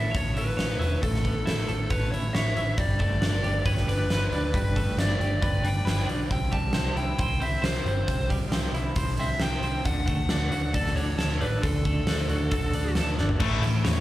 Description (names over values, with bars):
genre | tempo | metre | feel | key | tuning
quiet-loud alternative rock | 136 BPM | 4/4 | straight | unclear | A4 = 440 Hz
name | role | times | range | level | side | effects
fuzz lead guitar | melody | 0.0-12.9 s | A4 to A5 | -32 LUFS | left 1 dB | distortion, slapback echo
twelve-string electric guitar | arpeggios | 0.0-14.0 s | C3 to C#5 | -32 LUFS | right 1 dB | tremolo, slapback echo
overdriven picked electric bass | bass | 0.0-14.0 s | E1 to E2 | -28 LUFS | equal | none
huge arena drum kit | drums | 0.1-14.0 s | crash cymbal, hi-hat, kick drum, snare drum, toms | -28 LUFS | equal | none
high-gain distorted guitar | riff | 13.4-14.0 s | A2 to A3 | -27 LUFS | left 6 dB | distortion
room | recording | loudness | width
studio ambience | live gig heard through the venue's PA, club ambience | -23 LUFS | side -15 dB against mid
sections
0.0-13.4 A section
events
drum fill 13.2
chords
0.0 Aadd9; 2.8 Gadd9; 6.3 C; 9.9 D; 13.4 A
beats
0.14 0.58 | 1.02 1.46 1.90 2.34 | 2.78 3.22 3.67 4.11 | 4.55 4.99 5.43 5.87 | 6.31 6.75 7.20 7.64 | 8.08 8.53 8.97 9.41 | 9.86 10.30 10.74 11.19 | 11.63 12.08 12.52 12.97 | 13.41 13.86